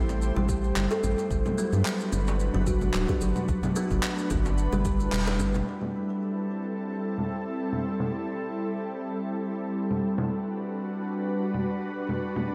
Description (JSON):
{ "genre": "organic downtempo", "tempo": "110 BPM", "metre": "4/4", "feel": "swing 54% on 16ths", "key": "A dorian", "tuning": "A4 = 441 Hz", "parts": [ { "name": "ethereal airy pad", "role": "sustained chords", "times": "0.0-12.5 s", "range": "G3 to C5", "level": "-33 LUFS", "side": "equal", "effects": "ensemble chorus, built-in reverb, sidechain pumping" }, { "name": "kalimba", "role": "arpeggios", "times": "0.0-5.7 s", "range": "F#3 to B4", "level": "-32 LUFS", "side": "equal", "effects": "delay" }, { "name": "round analog bass", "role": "bass", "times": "0.0-5.6 s", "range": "D1 to G2", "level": "-30 LUFS", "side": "equal", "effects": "sidechain pumping" }, { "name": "electronic shaker, congas and handclaps", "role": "drums", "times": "0.1-12.5 s", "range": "none", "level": "-36 LUFS", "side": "equal", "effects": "low-pass filter on perc, low-pass filter on snare, low-pass filter on room" }, { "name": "djembe", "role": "percussion", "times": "0.1-5.7 s", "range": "none", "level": "-40 LUFS", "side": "equal", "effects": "none" }, { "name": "electronic kick drum", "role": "drums", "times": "0.5-5.0 s", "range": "none", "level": "-33 LUFS", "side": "equal", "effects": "overdrive" } ], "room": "wet lush hall reverb, RT60 2.2 s", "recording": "dreamy mix soaked in reverb", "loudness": "-28 LUFS", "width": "mono", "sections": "0.0-5.7 A section; 5.7-12.5 B section", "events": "band accent 5.1", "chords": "0.0 Am7; 1.3 Gmaj7; 3.5 Bm7; 4.6 G6; 5.7 Am7; 10.0 Gmaj7" }